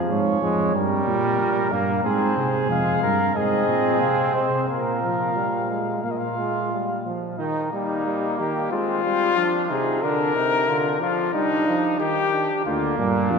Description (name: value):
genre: classical, imitative canzona for brass ensemble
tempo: 91 BPM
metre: 4/4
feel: straight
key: Eb major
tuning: A4 = 441 Hz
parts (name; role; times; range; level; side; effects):
- bright trombone; accompaniment; 0.0-13.4 s; Bb2 to C4; -26 LUFS; right 1 dB; none
- mellow tuba; bass; 0.0-7.0, 12.7-13.4 s; D2 to C3; -26 LUFS; right 2 dB; none
- warm flugelhorn; second line; 0.1-13.4 s; Bb3 to Db5; -26 LUFS; right 3 dB; none
- dark trumpet; melody; 2.0-13.4 s; D4 to F5; -24 LUFS; left 5 dB; none
room: wet church reverb, RT60 3.9 s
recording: recorded in a church or concert hall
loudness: -20 LUFS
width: side -5 dB against mid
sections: 0.0-7.4 A section; 7.4-13.4 B section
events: none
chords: 0.0 Db/F; 0.7 Gm; 2.0 Fm; 4.7 Bb5; 7.4 Eb; 8.7 Fm; 10.0 Bb; 11.3 Eb; 12.7 Bb/D